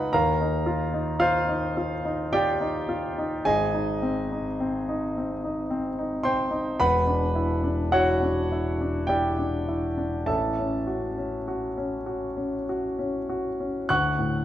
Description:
classical, impressionist solo piano; 49-57 BPM; 3/4; rubato; A4 = 440 Hz
clear concert grand piano; solo; 0.0-14.4 s; E1 to F#6; -24 LUFS; equal
wet recital hall reverb, RT60 1.8 s; dark, warm production; -24 LUFS; side -12 dB against mid
0.0-13.9 A section
0.1 Ebmaj9; 3.4 G#; 6.8 Em7; 10.3 A6; 13.9 D
| 0.14 1.21 2.31 | 3.44 4.57 5.69 | 6.80 7.91 9.08 | 10.28 11.49 12.68 | 13.89

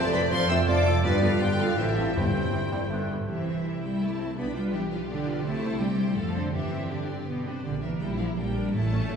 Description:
quick classical-period movement for symphony orchestra; 165 BPM; 3/4; rubato; C major; A4 = 441 Hz
rich studio violin section; melody; 0.0-9.2 s; B4 to E6; -36 LUFS; left 2 dB
bright concert flute; second line; 0.0-3.1 s; F4 to G5; -34 LUFS; right 1 dB
clear clarinet; second line; 0.0-3.1 s; D4 to G4; -38 LUFS; equal
rich studio violin section; second line; 0.0-9.2 s; C4 to D5; -37 LUFS; left 3 dB
warm oboe; second line; 0.0-3.1 s; A4 to D5; -36 LUFS; right 1 dB
clear bassoon; accompaniment; 0.0-3.3 s; D3 to A3; -35 LUFS; right 2 dB
clear studio viola section; accompaniment; 0.0-9.2 s; D3 to C5; -34 LUFS; right 1 dB
dark French horn section; sustained chords; 0.0-3.1 s; D4 to E5; -30 LUFS; left 2 dB
rich studio double bass section; bass; 0.0-9.2 s; F1 to C2; -31 LUFS; right 2 dB
warm studio cello section; bass; 0.0-9.2 s; F2 to B3; -30 LUFS; equal
timpani; percussion; 2.2-2.7, 8.7-9.2 s; G2 to A2; -32 LUFS; equal
wet concert hall reverb, RT60 2.2 s; heard from further back in the room, studio ambience; -24 LUFS; side -6 dB against mid
0.0-3.3 A section; 3.3-9.2 B section
0.0 Dm7/F; 1.0 G7; 1.8 Am; 2.2 C/G; 2.9 G; 3.3 C; 4.4 G7/B; 5.5 C; 6.2 F; 6.5 Gsus4; 7.3 G; 7.6 Gm/Bb
0.32 0.68 | 1.04 1.40 1.77 | 2.15 2.53 2.90 | 3.28 3.65 4.01 | 4.38 4.73 5.09 | 5.46 5.81 6.17 | 6.54 6.91 7.28 | 7.65 8.01 8.37 | 8.73 9.09

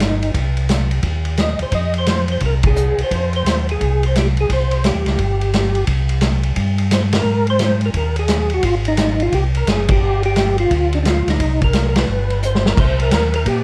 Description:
soul jazz organ trio; 174 BPM; 4/4; swing 64% on 8ths; C minor; A4 = 440 Hz
percussive tonewheel organ; melody; 0.0-13.6 s; D4 to Eb5; -23 LUFS; equal; slow rotary speaker, chorus vibrato
mellow tonewheel organ; bass; 0.0-13.6 s; F#1 to Bb2; -20 LUFS; equal; chorus vibrato, slow rotary speaker
vintage drum kit; drums; 0.0-13.6 s; crash cymbal, hi-hat, kick drum, ride cymbal, snare drum; -22 LUFS; equal
light reverb; dark, warm production; -17 LUFS; mono
0.0-12.8 A section
band accent 2.6, 7.1, 9.8, 11.9; drum fill 12.4-12.8
0.0 Cm; 1.7 Fm7; 4.5 C5; 7.3 Ab; 10.0 G5; 11.4 Cm7; 12.1 G; 12.8 Cm7
0.00 | 0.34 0.69 1.04 1.38 | 1.73 2.07 2.42 2.76 | 3.11 3.46 3.80 4.14 | 4.49 4.84 5.18 5.53 | 5.87 6.22 6.56 6.91 | 7.25 7.60 7.94 8.29 | 8.63 8.98 9.32 9.67 | 10.02 10.36 10.71 11.05 | 11.40 11.74 12.09 12.43 | 12.78 13.12 13.47

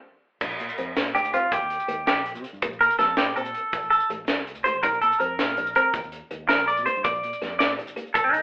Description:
highlife guitar band; 109 BPM (dotted quarters); 12/8; straight; A4 = 441 Hz
picked steel-string acoustic guitar; accompaniment; 0.4-8.2 s; A3 to D4; -33 LUFS; left 1 dB
fingered electric bass; bass; 0.4-8.4 s; Ab1 to C3; -42 LUFS; equal
tight funk drum kit; drums; 0.4-8.4 s; crash cymbal, hi-hat, kick drum, snare drum; -27 LUFS; equal
shekere; percussion; 0.4-8.3 s; -46 LUFS; equal
clean electric guitar; arpeggios; 1.1-8.4 s; C4 to D5; -21 LUFS; right 1 dB
wet studio reverb, RT60 0.6 s; band playing live in one room, telephone sound; -21 LUFS; side -22 dB against mid
0.4-8.4 A section
drum fill 0.0-0.4; band accent 0.0-0.4; clean electric guitar solo 0.4-8.4
0.4 Bb; 1.5 Eb; 2.6 Bb5; 3.7 Am; 4.8 Bb; 5.9 Eb5; 7.0 Bb
| 0.42 0.97 1.52 2.08 | 2.63 3.18 3.73 4.28 | 4.84 5.39 5.94 6.49 | 7.05 7.60 8.15

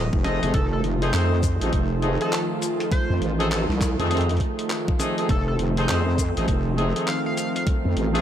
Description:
glitch hop; 101 BPM; 4/4; swing 62% on 16ths; A4 = 440 Hz
warm analog pad; sustained chords; 0.0-8.2 s; Eb3 to F4; -27 LUFS; right 1 dB; chorus, tremolo, vintage 12-bit sampler grit, sidechain pumping
wobble bass; bass; 0.0-8.2 s; Eb1 to F2; -23 LUFS; equal; chorus, tube saturation
electronic kick drum; drums; 0.1-7.8 s; -24 LUFS; equal; overdrive
sync lead; melody; 0.2-8.2 s; A4 to F5; -32 LUFS; equal; chorus, analog delay
clear horn section; stabs; 0.2-8.2 s; A3 to G#4; -29 LUFS; left 1 dB; sidechain pumping, analog delay
boom bap sampler-style drum kit; drums; 0.2-8.2 s; handclaps, hi-hat, shaker, snare drum; -32 LUFS; left 1 dB
light reverb; -20 LUFS; side -10 dB against mid
0.0-8.2 A section
0.0 F7#9
| 0.54 1.13 1.73 2.32 | 2.92 3.51 4.11 4.70 | 5.29 5.89 6.48 7.08 | 7.67

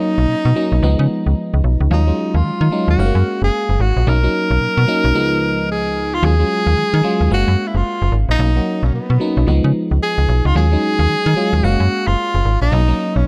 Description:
R&B, new jack swing; 111 BPM; 4/4; swing 61% on 16ths; Eb minor; A4 = 441 Hz
breathy tenor saxophone; melody; 0.0-13.3 s; B3 to A#4; -22 LUFS; equal
FM electric piano; accompaniment; 0.0-13.3 s; Db2 to F5; -23 LUFS; equal; chorus, phaser
slap-like FM bass; bass; 0.2-13.2 s; Gb1 to Eb3; -17 LUFS; equal
studio reverb; -16 LUFS; mono
0.0-6.2 A section; 6.2-13.3 B section
break 5.1-6.2
0.0 Bmaj7; 0.8 Db7; 1.9 Ebm11; 3.0 Gbmaj7; 4.1 Bmaj7; 5.1 Db7; 6.2 Ebm11; 7.3 Gbmaj7; 8.4 Bmaj7; 9.5 Db7; 10.6 Ebm11; 11.6 Gbmaj7; 12.7 Bmaj7
0.28 0.82 1.37 | 1.91 2.45 2.99 3.53 | 4.07 4.61 5.15 5.69 | 6.23 6.77 7.31 7.85 | 8.39 8.93 9.47 10.01 | 10.55 11.10 11.64 12.18 | 12.72 13.26

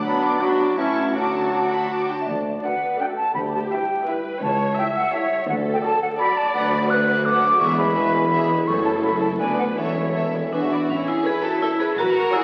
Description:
cinematic, playful, whimsical film cue; 168 BPM; 3/4; straight; D major, A major from 6.6 s; A4 = 440 Hz
rich studio violin section; melody; 0.0-12.4 s; A4 to D6; -34 LUFS; equal
warm symphonic violin section; second line; 0.0-12.4 s; B3 to C#6; -32 LUFS; equal
warm studio viola section; accompaniment; 0.0-12.4 s; B3 to E5; -30 LUFS; equal
dark French horn section; sustained chords; 0.0-10.7 s; F#3 to A4; -32 LUFS; equal
clear studio cello section; bass; 0.0-12.4 s; C#2 to F#4; -31 LUFS; equal
rich studio double bass section; bass; 0.0-12.3 s; E1 to D2; -38 LUFS; equal
concert flute; second line; 0.1-10.5 s; D5 to F#6; -25 LUFS; equal
mellow clarinet; second line; 0.1-1.9 s; C#4 to F#4; -27 LUFS; equal
clear bassoon; accompaniment; 0.1-2.1 s; E3 to F#3; -29 LUFS; equal
warm tuba; bass; 2.3-10.7 s; E1 to D2; -32 LUFS; equal
vibraphone with hard mallets; melody; 10.5-12.4 s; C#4 to G#4; -25 LUFS; equal
wet scoring stage reverb, RT60 1.9 s; very old 78 rpm record, vinyl crackle; -21 LUFS; mono
0.0-2.3 A section; 2.3-10.9 A section; 10.9-12.4 B section
0.1 Bm; 0.8 A; 1.2 D; 3.4 Em7/D; 4.4 A7/C#; 5.5 D; 6.6 Bm/D; 7.6 E; 8.7 F#m7; 9.4 Bm/D; 9.8 A/E; 10.5 E; 10.9 A
| 0.05 0.41 0.78 | 1.15 1.53 1.91 | 2.28 2.64 3.00 | 3.36 3.72 4.08 | 4.43 4.79 5.14 | 5.50 5.85 6.20 | 6.55 6.90 7.25 | 7.61 7.96 8.32 | 8.67 9.03 9.40 | 9.77 10.15 10.53 | 10.90 11.26 11.62 | 11.97 12.33

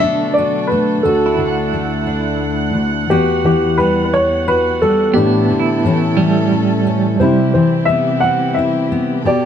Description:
acoustic folk-pop ballad; 88 BPM; 3/4; straight; A4 = 438 Hz
dark upright piano; melody; 0.0-9.5 s; B3 to F#5; -16 LUFS; equal
fingerpicked steel-string acoustic guitar; accompaniment; 0.0-9.5 s; D2 to G4; -17 LUFS; left 3 dB
warm chamber string section; sustained chords; 0.0-9.5 s; D2 to F#5; -22 LUFS; right 2 dB
clean electric guitar; arpeggios; 0.0-7.5 s; G3 to F#5; -20 LUFS; right 6 dB; tremolo
moderate studio reverb, RT60 0.9 s; dark, warm production; -13 LUFS; side -8 dB against mid
0.0-9.5 A section
0.0 Bm7; 1.0 D; 3.1 Emadd9; 5.1 Asus4; 5.8 A; 7.2 Cmaj7
0.36 | 1.04 1.73 2.41 | 3.09 3.77 4.46 | 5.14 5.83 6.52 | 7.21 7.89 8.57 | 9.25

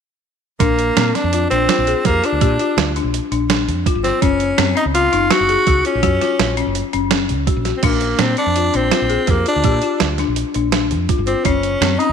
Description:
progressive instrumental, band music in an uneven meter; 166 BPM; 5/4; straight; A4 = 440 Hz
raspy tenor saxophone; melody; 0.6-12.1 s; Bb3 to Gb4; -18 LUFS; right 1 dB
folk marimba with hard mallets; arpeggios; 0.6-12.1 s; C4 to Ab4; -20 LUFS; left 13 dB
woody fretless electric bass; bass; 0.6-12.1 s; Gb1 to Bb2; -21 LUFS; right 1 dB; analog chorus
boom bap sampler-style drum kit; drums; 0.6-12.1 s; crash cymbal, hi-hat, kick drum, snare drum; -19 LUFS; right 6 dB; overdrive
moderate echo chamber reverb, RT60 1.9 s, digital ambience; 1960s-style stereo with parts hard left and right; -14 LUFS; side -7 dB against mid
0.6-7.8 A section; 7.8-12.1 B section
0.6 Bb; 4.2 Gb; 7.8 Bb; 11.5 Gb5
| 0.60 0.97 1.33 1.69 2.05 | 2.41 2.77 3.14 3.50 3.86 | 4.22 4.58 4.95 5.31 5.67 | 6.03 6.39 6.75 7.12 7.48 | 7.84 8.20 8.56 8.92 9.29 | 9.65 10.01 10.37 10.73 11.10 | 11.46 11.82

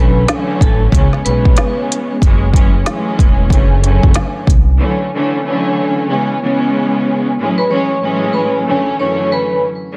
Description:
hip hop, boom-bap hip-hop; 93 BPM; 4/4; swing 62% on 16ths; F# minor; A4 = 437 Hz
vibraphone with hard mallets; melody; 0.0-1.7, 7.6-9.6 s; A4 to C#6; -21 LUFS; equal; high-pass filter, low-pass filter, digital delay
muted studio string section; accompaniment; 0.0-10.0 s; F#2 to C#4; -18 LUFS; equal; high-pass filter, low-pass filter
upright bass; bass; 0.0-4.8 s; E1 to C#2; -17 LUFS; equal
organic electronic drum kit; drums; 0.3-4.7 s; hi-hat, kick drum, snare drum; -14 LUFS; equal; vintage 12-bit sampler grit
small room reverb; dense, heavily limited modern master; -14 LUFS; mono
0.0-7.4 A section; 7.4-10.0 B section
break 4.8-7.4
0.0 Bm11; 0.9 C#m7; 2.2 F#m7; 3.5 Dmaj7/F#; 4.8 Dmaj9; 6.1 C#m7; 7.4 F#m7; 8.7 Dmaj7/F#
0.28 0.93 1.57 | 2.22 2.86 3.51 4.15 | 4.80 5.44 6.09 6.73 | 7.38 8.02 8.67 9.31 | 9.96

